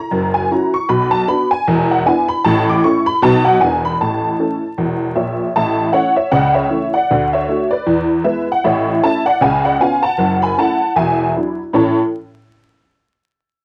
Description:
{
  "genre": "jazz, stride piano",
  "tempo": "155 BPM",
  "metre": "4/4",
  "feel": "swing 58% on 8ths",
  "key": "A major",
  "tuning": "A4 = 443 Hz",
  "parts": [
    { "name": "honky-tonk upright piano", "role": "solo", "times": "0.0-12.0 s", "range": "E1 to D6", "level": "-16 LUFS", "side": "equal", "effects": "cassette tape" }
  ],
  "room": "wet booth ambience, RT60 0.2 s",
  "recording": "home recording on cassette, vinyl crackle",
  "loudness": "-16 LUFS",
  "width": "mono",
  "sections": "0.0-5.5 A section; 5.5-11.7 B section; 11.7-13.3 C section",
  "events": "none",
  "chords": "0.1 F#5; 0.9 Bm; 1.7 E5; 2.5 A; 3.2 B7; 3.6 E7; 4.0 A; 6.3 A/C#; 7.1 D; 7.9 E; 8.6 A; 9.4 C#7; 10.2 F#m7; 11.0 E9; 11.7 A"
}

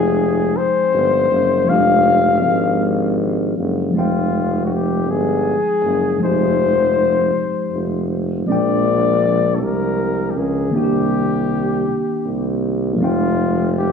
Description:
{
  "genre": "slow six-eight R&B",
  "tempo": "53 BPM (dotted quarters)",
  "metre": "6/8",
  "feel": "straight",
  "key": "F dorian",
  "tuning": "A4 = 440 Hz",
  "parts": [
    { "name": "warm flugelhorn", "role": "melody", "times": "0.0-13.9 s", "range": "F4 to F5", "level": "-18 LUFS", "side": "left 6 dB", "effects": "cassette tape" },
    { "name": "mellow tine electric piano", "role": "accompaniment", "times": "0.0-13.9 s", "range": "Eb3 to G5", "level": "-21 LUFS", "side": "equal", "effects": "medium stereo tremolo, cassette tape" },
    { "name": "warm tuba", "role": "bass", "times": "0.0-13.9 s", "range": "F1 to Db2", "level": "-20 LUFS", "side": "right 1 dB", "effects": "none" }
  ],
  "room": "moderate spring reverb, RT60 2.5 s",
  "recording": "home recording on cassette",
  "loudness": "-15 LUFS",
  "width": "side -6 dB against mid",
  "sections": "0.0-3.9 A section; 3.9-13.9 B section",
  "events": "none",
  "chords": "0.0 Fm9; 1.7 Fm69; 3.9 Fm9; 8.5 Bb13; 10.7 Cm7; 13.0 Fm9"
}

